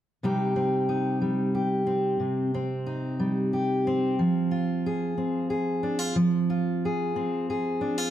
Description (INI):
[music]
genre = folk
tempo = 61 BPM (dotted quarters)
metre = 6/8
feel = straight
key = C minor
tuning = A4 = 440 Hz
[part]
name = fingerpicked steel-string acoustic guitar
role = accompaniment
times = 0.2-8.1 s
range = C3 to Ab4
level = -24 LUFS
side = equal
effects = none
[sound]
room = wet large studio reverb, RT60 1.4 s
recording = none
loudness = -24 LUFS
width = side -11 dB against mid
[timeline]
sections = 0.2-8.1 A section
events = none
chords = 0.2 Cm; 4.2 Fm